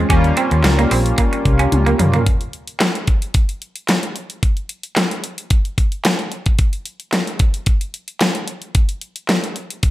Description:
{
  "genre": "early-eighties boogie funk",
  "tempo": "111 BPM",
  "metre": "4/4",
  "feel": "straight",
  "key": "unclear",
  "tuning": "A4 = 441 Hz",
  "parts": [
    { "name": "chorused polysynth", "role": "accompaniment", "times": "0.0-2.2 s", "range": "G3 to F4", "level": "-20 LUFS", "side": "left 2 dB", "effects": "none" },
    { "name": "electric guitar at the edge of break-up", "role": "riff", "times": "0.0-2.2 s", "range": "Bb3 to Db4", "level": "-21 LUFS", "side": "right 5 dB", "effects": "lush chorus" },
    { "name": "vintage muted fingered electric bass", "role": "bass", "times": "0.0-2.2 s", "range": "Bb1 to Gb2", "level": "-16 LUFS", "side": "equal", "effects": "none" },
    { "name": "dubstep drum kit", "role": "drums", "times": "0.1-9.9 s", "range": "handclaps, hi-hat, kick drum, snare drum, toms", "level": "-17 LUFS", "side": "equal", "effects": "gated reverb" }
  ],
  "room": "light reverb, digital ambience",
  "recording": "none",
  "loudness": "-16 LUFS",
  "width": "side -15 dB against mid",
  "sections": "0.0-2.3 A section; 2.3-9.9 B section",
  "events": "drum fill 1.7-2.3",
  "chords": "0.1 Eb9; 2.3 N.C."
}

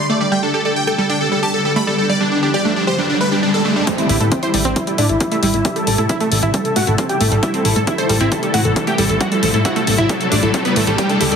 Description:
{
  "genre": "uplifting trance",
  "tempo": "135 BPM",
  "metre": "4/4",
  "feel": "straight",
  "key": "A minor",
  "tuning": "A4 = 440 Hz",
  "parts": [
    { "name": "supersaw chords", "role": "melody", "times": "0.0-11.4 s", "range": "B3 to B5", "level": "-19 LUFS", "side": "equal", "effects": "sidechain pumping, low-pass filter, digital delay" },
    { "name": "wide unison pluck", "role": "arpeggios", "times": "0.1-11.4 s", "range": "G3 to G5", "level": "-22 LUFS", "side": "right 3 dB", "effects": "sidechain pumping, digital delay" },
    { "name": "riser", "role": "sound effects", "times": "1.2-11.4 s", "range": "none", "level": "-25 LUFS", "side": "left 1 dB", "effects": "none" },
    { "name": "electronic hi-hat", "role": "drums", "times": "3.9-11.4 s", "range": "none", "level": "-23 LUFS", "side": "left 2 dB", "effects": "high-pass filter on hats" },
    { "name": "electronic kick drum", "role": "drums", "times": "3.9-11.1 s", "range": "none", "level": "-23 LUFS", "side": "left 1 dB", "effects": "high-pass filter on kick" },
    { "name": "plucky analog bass", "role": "bass", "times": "4.1-11.4 s", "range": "D1 to A2", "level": "-19 LUFS", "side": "left 1 dB", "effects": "sidechain pumping" }
  ],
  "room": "moderate recital hall reverb, RT60 1.8 s, digital ambience",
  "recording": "heavily compressed radio sound, multiband compression",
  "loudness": "-14 LUFS",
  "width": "side -7 dB against mid",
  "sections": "0.0-3.9 A section; 3.9-11.4 B section",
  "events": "riser 1.2-3.9, 3.9-11.4; build-up 3.9-11.4; filter sweep on supersaw synth 3.9-11.4; drum fill 11.0-11.4",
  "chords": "0.0 Dsus4; 3.9 Am7"
}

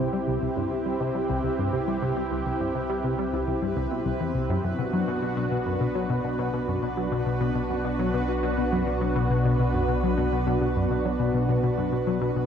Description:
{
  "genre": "ambient, sequencer-driven space music",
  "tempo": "103 BPM",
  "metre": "4/4",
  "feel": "straight",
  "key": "unclear",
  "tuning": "A4 = 440 Hz",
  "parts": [
    { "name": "lush unison pad", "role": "sustained chords", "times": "0.0-12.5 s", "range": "B3 to G4", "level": "-27 LUFS", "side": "right 1 dB", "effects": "chorus" },
    { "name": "tight sequenced synth", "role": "riff", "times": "0.0-12.5 s", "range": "C2 to G3", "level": "-27 LUFS", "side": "left 2 dB", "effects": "chorus, phaser, ping-pong delay" },
    { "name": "fat analog bass", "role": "bass", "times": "0.0-12.5 s", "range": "B1 to C2", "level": "-34 LUFS", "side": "right 1 dB", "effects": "none" },
    { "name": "bubbling stepped-filter texture", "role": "texture", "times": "0.0-12.5 s", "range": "B4", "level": "-37 LUFS", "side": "right 4 dB", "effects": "chorus, built-in reverb" }
  ],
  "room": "wet concert hall reverb, RT60 2.5 s",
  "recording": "dark, warm production",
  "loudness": "-23 LUFS",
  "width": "side -8 dB against mid",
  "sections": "0.0-12.5 A section",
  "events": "fade-in on analog synth bass 0.0-12.5; fade-in on synth texture 0.0-12.5",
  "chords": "0.0 C; 4.6 Bm"
}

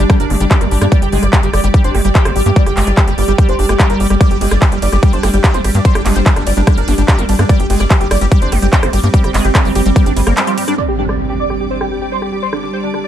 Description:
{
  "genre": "psychedelic trance",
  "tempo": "146 BPM",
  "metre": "4/4",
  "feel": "straight",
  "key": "unclear",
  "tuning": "A4 = 440 Hz",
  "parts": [
    { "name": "wide unison lead", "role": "melody", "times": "0.0-13.1 s", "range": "G3 to D5", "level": "-21 LUFS", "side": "equal", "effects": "phaser, sidechain pumping, digital delay" },
    { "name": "evolving wavetable pad", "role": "sustained chords", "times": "0.0-13.1 s", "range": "G3 to G4", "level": "-22 LUFS", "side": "right 2 dB", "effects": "chorus, built-in reverb, sidechain pumping" },
    { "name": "liquid acid bass", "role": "riff", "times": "0.0-10.7 s", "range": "G3 to G4", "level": "-20 LUFS", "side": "left 1 dB", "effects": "chorus, auto-pan, vintage 12-bit sampler grit, sidechain pumping, digital delay" },
    { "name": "tight sequencer bass", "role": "bass", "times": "0.0-10.3 s", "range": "G1 to G2", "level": "-15 LUFS", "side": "equal", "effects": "none" },
    { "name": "warm studio string section", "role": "texture", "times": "0.0-13.1 s", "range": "G3 to D6", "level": "-24 LUFS", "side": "right 2 dB", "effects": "sidechain pumping" },
    { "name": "big-room dance drum kit", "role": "drums", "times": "0.1-13.1 s", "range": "handclaps, hi-hat, ride cymbal, rim click", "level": "-20 LUFS", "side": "equal", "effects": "overdrive, low-pass filter on hats, studio reverb, low-pass filter on snare, low-pass filter on cymbals" },
    { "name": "electronic kick drum", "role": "drums", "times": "0.1-10.0 s", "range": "none", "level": "-12 LUFS", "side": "equal", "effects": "overdrive, studio reverb" },
    { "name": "impact", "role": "sound effects", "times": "10.8-12.4 s", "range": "none", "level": "-23 LUFS", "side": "equal", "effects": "none" }
  ],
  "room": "little or no reverb",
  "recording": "dark, warm production",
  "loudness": "-10 LUFS",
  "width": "side -11 dB against mid",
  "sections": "0.0-10.8 A section; 10.8-13.1 B section",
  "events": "drop 0.0-10.8; break 10.4-10.8; band accent 10.4; impact 10.8-12.4",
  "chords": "0.0 G5"
}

